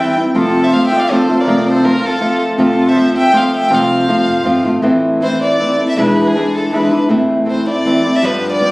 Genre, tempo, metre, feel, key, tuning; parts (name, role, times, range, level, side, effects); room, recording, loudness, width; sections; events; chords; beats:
mexican folk, mariachi; 160 BPM; 3/4; straight; F major, A minor from 4.8 s; A4 = 440 Hz
dark violin; melody; 0.0-8.7 s; G#4 to G5; -17 LUFS; equal
clear trumpet; second line; 0.0-4.7 s; F4 to E5; -22 LUFS; right 2 dB; slapback echo
flamenco guitar; accompaniment; 0.0-8.7 s; E2 to G4; -12 LUFS; equal
upright bass; bass; 0.3-8.3 s; E1 to F2; -33 LUFS; equal
moderate recital hall reverb, RT60 1.7 s; recorded on a phone in the room, studio reverb, compression; -11 LUFS; side -22 dB against mid
0.0-4.8 A section; 4.8-8.7 B section
0.4 F; 4.8 Am; 6.0 E7; 7.1 Am; 8.2 G7
| 0.35 0.73 1.10 | 1.48 1.85 2.22 | 2.59 2.96 3.33 | 3.71 4.08 4.46 | 4.84 5.22 5.60 | 5.97 6.35 6.72 | 7.10 7.47 7.84 | 8.22 8.59